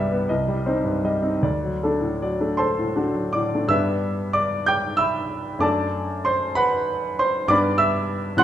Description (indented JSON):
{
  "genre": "classical, romantic character piece for solo piano",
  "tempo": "50-69 BPM (dotted quarters)",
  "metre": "6/8",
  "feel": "rubato",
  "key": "G major",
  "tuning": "A4 = 441 Hz",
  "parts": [
    { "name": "clear grand piano", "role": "solo", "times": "0.0-8.4 s", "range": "C2 to G6", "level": "-20 LUFS", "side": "equal", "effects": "none" }
  ],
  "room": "moderate recital hall reverb, RT60 1.6 s",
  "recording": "minimal, uncompressed stereo recording",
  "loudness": "-20 LUFS",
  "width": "side -11 dB against mid",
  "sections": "0.0-3.7 A section; 3.7-8.4 B section",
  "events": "none",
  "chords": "0.3 Cm; 1.4 D; 3.7 G; 5.6 D/F#; 7.5 G"
}